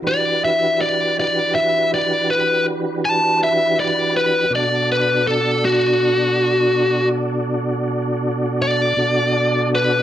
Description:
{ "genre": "blues", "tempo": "54 BPM (dotted quarters)", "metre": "12/8", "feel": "straight", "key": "B minor", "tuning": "A4 = 440 Hz", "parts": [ { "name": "tonewheel organ", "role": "sustained chords", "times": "0.0-10.0 s", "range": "B2 to D5", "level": "-20 LUFS", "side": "right 1 dB", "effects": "slow rotary speaker, chorus vibrato" }, { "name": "biting lead guitar", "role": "melody", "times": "0.1-10.0 s", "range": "F#4 to A5", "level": "-17 LUFS", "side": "left 1 dB", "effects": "overdrive, plate reverb" } ], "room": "moderate small room ambience, RT60 0.5 s", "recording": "dark, warm production", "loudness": "-16 LUFS", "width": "side -11 dB against mid", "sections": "0.0-10.0 A section", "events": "lead electric guitar solo 0.0-10.0", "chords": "0.0 Em7; 4.5 Bm7" }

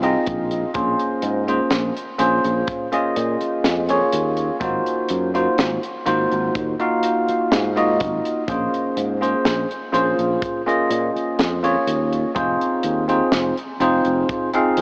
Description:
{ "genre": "vaporwave", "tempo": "62 BPM", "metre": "4/4", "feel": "straight", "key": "Bb minor", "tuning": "A4 = 440 Hz", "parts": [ { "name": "bell-like tine electric piano", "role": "accompaniment", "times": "0.0-14.8 s", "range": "Bb3 to F5", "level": "-19 LUFS", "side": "equal", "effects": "lush chorus, vintage 12-bit sampler grit, tape echo" }, { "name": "sustaining fretless electric bass", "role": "bass", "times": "0.0-14.8 s", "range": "F1 to Bb2", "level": "-24 LUFS", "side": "equal", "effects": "none" }, { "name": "crisp fusion drum kit", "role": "drums", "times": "0.0-14.8 s", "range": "hi-hat, snare drum", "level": "-25 LUFS", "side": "equal", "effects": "none" }, { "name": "kick drum", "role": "drums", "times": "0.3-14.5 s", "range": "none", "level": "-32 LUFS", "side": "equal", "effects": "none" } ], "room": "moderate huge ambient reverb, RT60 5.3 s", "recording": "cassette tape, small speaker sound", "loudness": "-18 LUFS", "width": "side -37 dB against mid", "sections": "0.0-14.8 A section", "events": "none", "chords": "0.0 Fm7; 0.7 Bbm9; 4.6 Ab13; 8.5 Bbm9; 12.4 Fm7" }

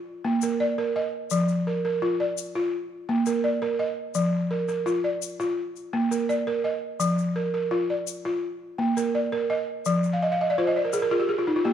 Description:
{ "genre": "west african traditional, West African string and xylophone music", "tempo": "84 BPM", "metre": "4/4", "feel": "straight", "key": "unclear", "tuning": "A4 = 440 Hz", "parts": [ { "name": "balafon", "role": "arpeggios", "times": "0.2-11.7 s", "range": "F3 to F5", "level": "-23 LUFS", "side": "right 1 dB", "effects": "none" }, { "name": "egg shaker", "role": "percussion", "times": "0.4-11.1 s", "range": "none", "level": "-37 LUFS", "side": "left 11 dB", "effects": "none" } ], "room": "moderate recital hall reverb, RT60 1.6 s", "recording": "dark, warm production", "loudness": "-23 LUFS", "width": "side -9 dB against mid", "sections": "0.0-11.7 A section", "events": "balafon fill 10.1-11.7", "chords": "0.0 Bb; 1.3 Bbadd11/F; 2.7 Bb; 4.1 Bbadd11/F; 5.6 Bb; 7.0 Bbadd11/F; 8.4 Bb; 9.9 Fm13" }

